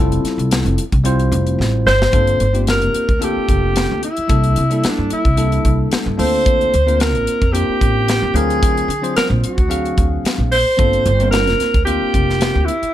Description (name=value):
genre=electric jazz fusion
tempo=111 BPM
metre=4/4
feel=swing 53% on 16ths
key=unclear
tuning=A4 = 439 Hz
part: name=bell-like tine electric piano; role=accompaniment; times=0.0-12.7 s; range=F#3 to E#5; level=-22 LUFS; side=left 2 dB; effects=wide subtle chorus
part: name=upright bass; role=bass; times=0.0-12.9 s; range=F1 to D3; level=-18 LUFS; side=equal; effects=none
part: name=crisp fusion drum kit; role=drums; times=0.1-12.9 s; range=hi-hat, kick drum, snare drum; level=-19 LUFS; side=equal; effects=none
part: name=warm alto saxophone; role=melody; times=1.9-12.9 s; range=D4 to C5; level=-18 LUFS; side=right 1 dB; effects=plate reverb
room=little or no reverb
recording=none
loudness=-13 LUFS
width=side -12 dB against mid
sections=0.0-2.1 A section; 2.1-12.9 B section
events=drum fill 1.6-2.1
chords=0.0 Fmaj9; 2.1 Gm11; 4.3 C13; 6.2 Bbmaj7; 8.4 D7alt; 10.8 Gm11